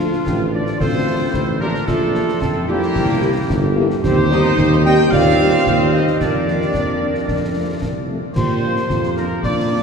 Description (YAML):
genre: military-style march for wind band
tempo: 111 BPM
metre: 2/4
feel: straight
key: Bb major from 4.0 s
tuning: A4 = 437 Hz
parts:
  - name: dark trumpet section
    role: melody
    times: 0.0-9.8 s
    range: F4 to G5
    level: -26 LUFS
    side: equal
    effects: none
  - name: dark woodwind section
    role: second line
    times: 0.0-9.8 s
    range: D4 to Eb5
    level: -25 LUFS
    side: equal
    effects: none
  - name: mellow flute section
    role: second line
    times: 0.0-9.8 s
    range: F4 to D6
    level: -25 LUFS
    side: left 1 dB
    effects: none
  - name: warm euphonium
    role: second line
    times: 0.0-9.8 s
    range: F3 to G4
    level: -24 LUFS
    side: right 3 dB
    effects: none
  - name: dark French horn section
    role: accompaniment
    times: 0.0-9.8 s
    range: E3 to G4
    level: -26 LUFS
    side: left 4 dB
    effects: none
  - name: warm tuba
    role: bass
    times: 0.0-9.8 s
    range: G1 to Bb2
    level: -19 LUFS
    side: right 1 dB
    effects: none
  - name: concert snare drum, concert bass drum and clash cymbals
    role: drums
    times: 0.1-9.8 s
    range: none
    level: -24 LUFS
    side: left 1 dB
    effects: none
  - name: brilliant trombone section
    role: sustained chords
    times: 0.3-9.8 s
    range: F3 to F4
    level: -26 LUFS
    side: equal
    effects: none
room: wet cathedral reverb, RT60 6.1 s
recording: recorded in a church or concert hall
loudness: -15 LUFS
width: side -6 dB against mid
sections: 0.0-8.4 A section; 8.4-9.8 B section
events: none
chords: 0.0 Dm; 1.9 Bb; 3.0 C7; 4.0 Cm/Eb; 6.2 Bb/F; 7.3 F; 8.4 Bb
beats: 0.26 | 0.80 1.34 | 1.88 2.42 | 2.96 3.50 | 4.04 4.58 | 5.12 5.66 | 6.20 6.74 | 7.28 7.82 | 8.36 8.90 | 9.44